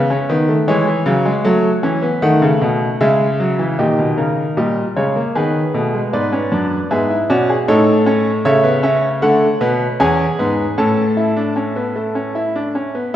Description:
classical, baroque-style 4-part fugue for grand piano; 77 BPM; 3/4; straight; A major from 8.4 s; A4 = 437 Hz
bright grand piano; solo; 0.0-13.1 s; E2 to A5; -14 LUFS; equal
wet recital hall reverb, RT60 1.8 s; heard from further back in the room; -14 LUFS; side -11 dB against mid
0.0-3.8 A section; 3.8-13.1 B section
0.0 C#m; 0.7 C#m/E; 1.4 F#m; 3.0 C#m; 3.8 D#7/A#; 5.4 G#m/D#; 6.1 E7; 7.7 A; 8.4 A/C#; 9.2 Bm7/D; 10.0 E; 10.8 A
0.68 | 1.45 2.23 3.01 | 3.79 4.57 5.35 | 6.13 6.91 7.68 | 8.45 9.22 10.00 | 10.78 11.57 12.36

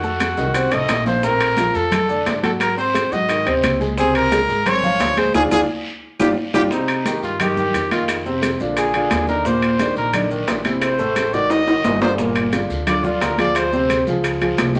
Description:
Afro-Cuban jazz; 175 BPM; 4/4; straight; C minor; A4 = 441 Hz
clear trumpet; melody; 0.0-14.1 s; Eb4 to Eb5; -23 LUFS; equal
warm grand piano; accompaniment; 0.0-14.8 s; A2 to C6; -24 LUFS; equal
upright bass; bass; 0.0-14.8 s; G1 to Ab2; -30 LUFS; equal
bongos; percussion; 0.0-14.8 s; -33 LUFS; equal
congas; percussion; 0.0-14.8 s; -29 LUFS; equal
maracas; percussion; 0.0-14.8 s; -42 LUFS; equal
claves; percussion; 0.2-14.8 s; barely audible
guiro; percussion; 0.2-14.8 s; -38 LUFS; equal
timbales; percussion; 0.2-14.8 s; -25 LUFS; equal
wet studio reverb, RT60 0.9 s; -19 LUFS; mono
0.0-6.7 A section; 6.7-14.8 B section
drum fill 0.2-1.2, 5.7-6.7, 11.5-12.2; band accent 5.3-6.7; trumpet solo 6.7-14.8
0.0 F7b9; 1.2 Bbmaj9; 2.6 Ab7; 4.0 Dbmaj7; 5.3 Ddim; 6.0 G5; 6.7 Cm; 8.1 F5; 8.8 Bb7; 9.5 Eb5; 10.8 Am; 11.5 Ab5; 12.2 Gm7; 13.6 Dm7b5; 14.2 Db
0.20 0.55 0.89 | 1.24 1.58 1.92 2.26 | 2.61 2.95 3.29 3.63 | 3.98 4.32 4.66 5.00 | 5.35 5.69 6.03 6.37 | 6.72 7.06 7.40 7.74 | 8.09 8.43 8.77 9.11 | 9.46 9.80 10.14 10.48 | 10.82 11.16 11.51 11.85 | 12.19 12.53 12.88 13.22 | 13.56 13.90 14.24 14.58

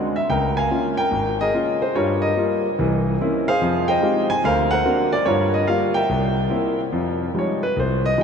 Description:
solo jazz; 145 BPM; 4/4; swing 66% on 8ths; F minor; A4 = 440 Hz
warm grand piano; solo; 0.0-8.2 s; Ab1 to Ab5; -18 LUFS; equal; ping-pong delay
wet huge ambient reverb, RT60 8.2 s; dreamy mix soaked in reverb; -18 LUFS; side -6 dB against mid
0.0-6.9 A section; 6.9-8.2 B section
grand piano solo 6.9-8.2
0.3 Db6; 1.9 Gm7b5; 2.8 C7b9; 3.6 Fm9; 4.4 Daug7; 5.3 Gm7b5; 6.1 C7; 6.9 Fm9
| 0.29 0.70 1.11 1.53 | 1.94 2.36 2.77 3.19 | 3.60 4.02 4.43 4.85 | 5.26 5.68 6.09 6.51 | 6.92 7.34 7.75 8.17

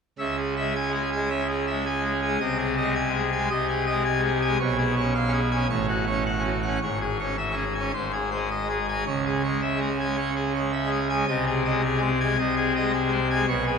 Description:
classical, organ toccata; 109 BPM; 4/4; straight; C# minor; A4 = 437 Hz
pipe organ, full organ; solo; 0.2-13.8 s; G#1 to G#5; -22 LUFS; equal
wet cathedral reverb, RT60 4.2 s; -22 LUFS; side -6 dB against mid
0.2-13.8 A section
0.2 C#m; 2.4 G#/B#; 4.6 C#7/B; 5.7 F#m/A; 6.8 C#m/G#; 7.9 G#; 9.1 C#m; 11.3 G#/B#
| 0.19 0.75 1.30 1.86 | 2.41 2.96 3.50 4.05 | 4.60 5.15 5.70 6.25 | 6.81 7.38 7.94 8.51 | 9.07 9.62 10.18 10.73 | 11.28 11.84 12.38 12.94 | 13.48

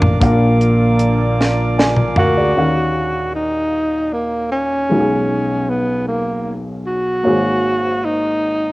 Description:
slow gospel; 51 BPM (dotted quarters); 6/8; straight; Eb minor; A4 = 440 Hz
warm baby grand piano; accompaniment; 0.0-8.7 s; Ab1 to Ab5; -18 LUFS; equal
tonewheel organ; sustained chords; 0.0-2.5 s; Bb4 to D6; -23 LUFS; right 2 dB; stopped rotary speaker
fingered electric bass; bass; 0.0-2.5 s; A1 to D2; -19 LUFS; equal
tight funk drum kit; drums; 0.0-2.3 s; hi-hat, kick drum, snare drum, toms; -16 LUFS; equal; cassette tape
evolving wavetable pad; sustained chords; 0.8-2.5 s; D3 to D4; -25 LUFS; right 2 dB
breathy tenor saxophone; melody; 2.2-8.7 s; Bb3 to Gb4; -18 LUFS; equal; cassette tape
light reverb, studio reverb; home recording on cassette; -14 LUFS; side -20 dB against mid
0.2-2.5 A section; 2.5-8.7 B section
drum fill 0.0, 1.4-2.5
0.2 Bb; 2.5 Ebm9; 4.9 B69; 7.2 Ab9sus4
| 0.21 1.38 | 2.55 3.72 | 4.90 6.07 | 7.25 8.42

